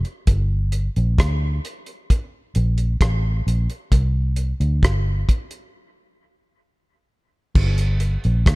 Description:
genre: dub reggae.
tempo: 66 BPM.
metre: 4/4.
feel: straight.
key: G minor.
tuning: A4 = 438 Hz.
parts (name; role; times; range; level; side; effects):
vintage muted fingered electric bass; bass; 0.0-8.6 s; G1 to D2; -19 LUFS; equal; none.
cloth-damped thuddy drum kit; drums; 0.0-8.6 s; crash cymbal, hi-hat, kick drum, rim click; -20 LUFS; equal; none.
room: little or no reverb.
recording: dark, warm production.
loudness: -18 LUFS.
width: side -24 dB against mid.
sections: 0.0-7.6 A section; 7.6-8.6 B section.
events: break 5.7-7.6.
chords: none.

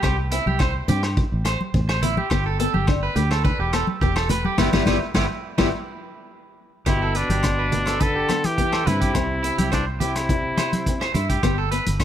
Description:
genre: highlife guitar band.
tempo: 105 BPM.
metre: 4/4.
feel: straight.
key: G major.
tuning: A4 = 440 Hz.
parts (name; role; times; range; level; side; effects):
picked acoustic archtop guitar; accompaniment; 0.0-12.0 s; G3 to E4; -29 LUFS; left 5 dB; none.
electric guitar at the edge of break-up; arpeggios; 0.0-11.8 s; E4 to C5; -26 LUFS; right 4 dB; spring reverb, slapback echo.
fingered electric bass; bass; 0.0-12.0 s; E1 to G2; -24 LUFS; equal; none.
vintage drum kit; drums; 0.0-12.0 s; hi-hat, kick drum, rim click, snare drum; -25 LUFS; equal; none.
agogo bells; percussion; 0.0-12.0 s; none; -33 LUFS; left 6 dB; none.
congas; percussion; 0.5-12.0 s; none; -26 LUFS; equal; none.
breathy trumpet; melody; 6.9-11.1 s; D4 to A4; -25 LUFS; equal; none.
warm trombone; second line; 6.9-11.1 s; G2 to E3; -30 LUFS; left 2 dB; none.
room: little or no reverb.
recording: none.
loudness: -19 LUFS.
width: side -10 dB against mid.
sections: 0.0-6.9 A section; 6.9-12.0 B section.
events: band accent 4.6-6.9; drum fill 6.3-6.9.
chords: 0.0 C; 2.3 Gadd9; 4.6 Em/G; 6.9 Gadd9; 9.1 C; 11.4 Gadd9.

